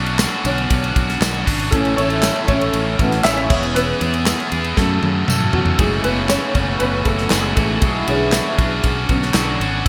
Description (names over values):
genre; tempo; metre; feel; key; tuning
piano-driven pop; 118 BPM; 4/4; straight; F# minor; A4 = 442 Hz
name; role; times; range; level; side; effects
dark upright piano; accompaniment; 0.0-9.9 s; D3 to E5; -24 LUFS; equal; ensemble chorus
cranked stack guitar; riff; 0.0-9.9 s; F#2 to A4; -23 LUFS; equal; overdrive, subtle chorus
fingered electric bass; bass; 0.0-9.9 s; E1 to F#2; -25 LUFS; equal; none
modern studio drum kit; drums; 0.1-9.9 s; crash cymbal, handclaps, hi-hat, kick drum, ride cymbal, snare drum, toms; -23 LUFS; equal; gated reverb
tambourine; percussion; 0.2-9.5 s; none; -30 LUFS; equal; none
mellow French horn section; second line; 1.7-9.9 s; A2 to E4; -28 LUFS; equal; none
room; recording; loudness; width
light reverb, small room ambience; bright 1980s-style digital production; -18 LUFS; mono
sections
0.0-5.8 A section; 5.8-9.9 B section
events
upright piano solo 0.0-5.8, 5.8-9.9; drum fill 4.8-5.8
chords
0.0 Bmadd9; 1.7 A; 3.5 E; 4.8 F#m; 5.8 F#m7; 7.8 Bmadd9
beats
0.20 0.70 1.21 | 1.72 2.23 2.74 3.25 | 3.76 4.26 4.77 5.28 | 5.79 6.30 6.81 7.32 | 7.82 8.33 8.84 9.35 | 9.86